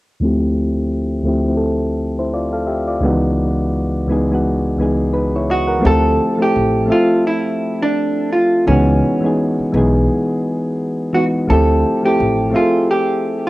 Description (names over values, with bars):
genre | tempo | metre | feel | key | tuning
hip hop | 85 BPM | 4/4 | swing 59% on 16ths | unclear | A4 = 440 Hz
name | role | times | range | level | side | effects
soft electric-piano-like synth keys | accompaniment | 0.2-13.5 s | C#2 to F#5 | -16 LUFS | left 1 dB | chorus, cassette tape, low-pass filter
hollow-body jazz guitar | melody | 5.5-13.5 s | C#4 to A4 | -17 LUFS | right 1 dB | low-pass filter, cassette tape
upright bass | bass | 5.8-12.5 s | A1 to D2 | -17 LUFS | equal | none
room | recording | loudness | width
moderate studio reverb, RT60 0.6 s | home recording on cassette | -14 LUFS | side -18 dB against mid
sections
0.2-5.8 A section; 5.8-13.5 B section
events
filter sweep on synth keys 0.2-5.8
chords
0.2 Dm11; 3.0 C#m11; 5.8 Dm11 (rootless); 8.7 C#m11; 11.5 Dm11